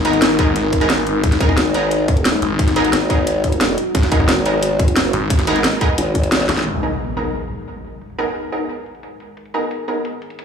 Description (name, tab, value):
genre	dark technical drum and bass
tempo	177 BPM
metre	4/4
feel	straight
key	G# minor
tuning	A4 = 440 Hz
part	deep dark ambient pad	sustained chords	0.0-10.4 s	G#3 to A#4	-24 LUFS	left 3 dB	chorus, built-in reverb, sidechain pumping
part	orchestra-hit-like synth stab	stabs	0.0-10.0 s	B3 to A#4	-22 LUFS	right 2 dB	built-in reverb, tape echo
part	snarling distorted saw bass	bass	0.0-6.6 s	G#1	-20 LUFS	equal	distortion, tube saturation
part	drum and bass drum kit	drums	0.0-10.4 s	crash cymbal, hi-hat, rim click, snare drum	-20 LUFS	equal	overdrive, low-pass filter on hats, small room ambience, low-pass filter on cymbals, low-pass filter on snare
part	electronic kick drum	drums	0.4-6.2 s	none	-17 LUFS	equal	overdrive, small room ambience
part	formant-sweep wobble bass	bass	1.6-6.5 s	G#1	-19 LUFS	equal	chorus
part	zap and impact	sound effects	6.5-8.0 s	none	-26 LUFS	left 1 dB	none
room	light reverb, digital ambience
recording	small room ambience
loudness	-15 LUFS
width	side -7 dB against mid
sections	0.0-6.7 A section; 6.7-10.4 B section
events	drum fill 6.4; impact 6.7-8.0; filter sweep on drum 6.7-10.4; filter sweep on ambient pad 6.7-10.4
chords	0.0 G#madd9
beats	0.22 0.56 0.90 | 1.24 1.57 1.91 2.25 | 2.59 2.93 3.27 3.61 | 3.95 4.29 4.62 4.96 | 5.30 5.64 5.98 6.32 | 6.66 7.00 7.34 7.68 | 8.02 8.35 8.69 9.03 | 9.37 9.71 10.05 10.39